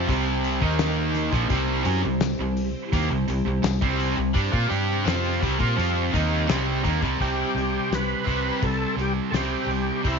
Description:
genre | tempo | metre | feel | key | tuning
classic rock | 84 BPM | 4/4 | straight | unclear | A4 = 440 Hz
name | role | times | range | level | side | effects
string machine, cellos | sustained chords | 0.0-7.2 s | Bb3 to E5 | -33 LUFS | equal | ensemble chorus
cranked stack guitar | riff | 0.0-10.2 s | Bb2 to G4 | -28 LUFS | left 13 dB | overdrive, harmonic tremolo
distorted electric guitar | riff | 0.0-10.2 s | Bb2 to G4 | -26 LUFS | right 14 dB | distortion
vintage muted fingered electric bass | bass | 0.0-10.2 s | Bb1 to Bb2 | -27 LUFS | equal | none
cloth-damped thuddy drum kit | drums | 0.1-10.2 s | hi-hat, kick drum, snare drum | -28 LUFS | left 3 dB | none
tambourine | percussion | 0.8-6.6 s | none | -44 LUFS | left 14 dB | none
overdriven tonewheel organ | melody | 7.2-10.2 s | E4 to B4 | -28 LUFS | equal | slow rotary speaker, chorus vibrato
room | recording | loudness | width
light reverb, studio ambience | 1960s-style stereo with parts hard left and right, nothing above 7.5 kHz | -21 LUFS | side -5 dB against mid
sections
0.0-7.2 A section; 7.2-10.2 B section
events
none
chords
0.0 C; 0.6 Eb5; 1.3 C; 7.2 C5

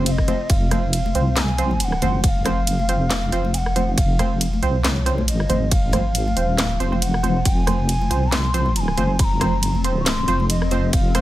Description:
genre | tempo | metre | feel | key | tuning
deep dubstep | 138 BPM | 4/4 | swing 56% on 16ths, half-time | F phrygian | A4 = 439 Hz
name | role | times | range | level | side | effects
breathy mellow ney | melody | 0.0-11.2 s | Db5 to Db6 | -27 LUFS | left 1 dB | vintage 12-bit sampler grit, dub echo
granular cloud pad | sustained chords | 0.0-11.2 s | C3 to C4 | -30 LUFS | left 1 dB | built-in reverb
filtered dub chord stab | stabs | 0.0-11.2 s | F3 to C5 | -26 LUFS | right 4 dB | chorus, dub echo
deep soft wobble bass | bass | 0.0-11.2 s | Eb1 to C2 | -21 LUFS | equal | chorus
garage drum kit | drums | 0.1-11.2 s | handclaps, hi-hat, ride cymbal, rim click, snare drum | -26 LUFS | equal | small room ambience
electronic kick drum | drums | 0.2-11.0 s | none | -19 LUFS | equal | small room ambience
congas | percussion | 0.3-11.2 s | none | -29 LUFS | left 3 dB | none
room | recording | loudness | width
digital ambience | none | -17 LUFS | side -15 dB against mid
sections
0.5-11.2 A section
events
drop 0.5-11.2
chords
0.5 F5

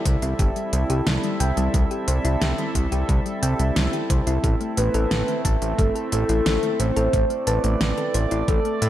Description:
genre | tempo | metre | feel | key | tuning
synthwave | 89 BPM | 4/4 | straight | A minor | A4 = 441 Hz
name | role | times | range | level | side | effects
chorused pulse-width pad | sustained chords | 0.0-8.9 s | G3 to E5 | -27 LUFS | right 2 dB | sidechain pumping
thumb-piano-like synth pluck | arpeggios | 0.1-8.9 s | G3 to A5 | -30 LUFS | left 4 dB | chorus, digital delay
fat analog bass | bass | 0.1-8.9 s | G1 to A2 | -23 LUFS | equal | none
electronic kick drum | drums | 0.1-8.6 s | none | -22 LUFS | equal | none
pop drum kit | drums | 0.1-8.9 s | hi-hat, snare drum | -28 LUFS | equal | gated reverb
soft octave-layered synth lead | melody | 4.8-8.9 s | A4 to C5 | -25 LUFS | equal | chorus, phaser, digital delay
room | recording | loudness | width
light reverb, digital ambience | none | -19 LUFS | side -12 dB against mid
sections
0.0-8.9 A section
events
none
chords
0.0 Am

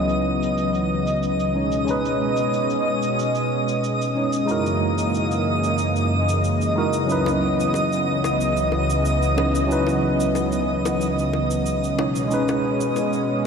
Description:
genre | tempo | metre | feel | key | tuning
sunset chillout | 92 BPM | 4/4 | straight | C# dorian | A4 = 440 Hz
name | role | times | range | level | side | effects
tine electric piano | accompaniment | 0.0-13.5 s | F#3 to C#5 | -24 LUFS | equal | medium stereo tremolo, auto-pan, low-pass filter, analog delay
lush unison pad | sustained chords | 0.0-13.5 s | C#2 to D#5 | -22 LUFS | equal | chorus
twinkling granular texture | texture | 0.0-13.5 s | D#6 | -29 LUFS | right 1 dB | built-in reverb
cabasa | drums | 0.1-13.3 s | none | -40 LUFS | right 5 dB | low-pass filter on perc, low-pass filter on room
bongos | percussion | 7.3-13.1 s | none | -33 LUFS | left 6 dB | none
room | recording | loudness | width
wet lush hall reverb, RT60 2.7 s | dreamy mix soaked in reverb | -19 LUFS | side -6 dB against mid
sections
0.0-13.5 A section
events
none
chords
0.0 C#m11; 1.6 B69; 4.5 F#13; 7.1 C#m11; 12.0 B69

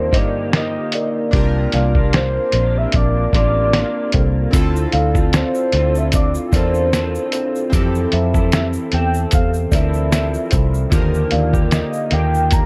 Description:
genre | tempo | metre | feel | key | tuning
indie pop, bedroom pop | 75 BPM | 4/4 | swing 55% on 16ths | F major | A4 = 440 Hz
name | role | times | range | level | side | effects
soft octave-layered synth lead | melody | 0.0-12.7 s | C5 to Bb5 | -24 LUFS | equal | lush chorus, slapback echo
chorused retro synth keys | accompaniment | 0.0-12.7 s | D3 to Bb4 | -28 LUFS | equal | none
electric guitar through a small old amp | accompaniment | 0.0-12.7 s | C3 to A4 | -27 LUFS | equal | ensemble chorus, warbly pitch drift
vintage muted fingered electric bass | bass | 0.0-12.7 s | A1 to G2 | -21 LUFS | equal | none
kalimba | second line | 0.1-11.5 s | A4 to F5 | -29 LUFS | equal | lush chorus, slapback echo
lo-fi sampler-style drum kit | drums | 0.1-12.7 s | hi-hat, kick drum, snare drum | -20 LUFS | equal | none
egg shaker | percussion | 4.5-12.7 s | none | -40 LUFS | equal | none
room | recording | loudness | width
digital ambience | dark, warm production | -17 LUFS | mono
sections
0.0-12.7 A section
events
none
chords
0.0 Ebmaj7; 1.3 C9sus4; 4.5 Dm7; 7.7 Fmaj7; 10.9 Ebmaj7

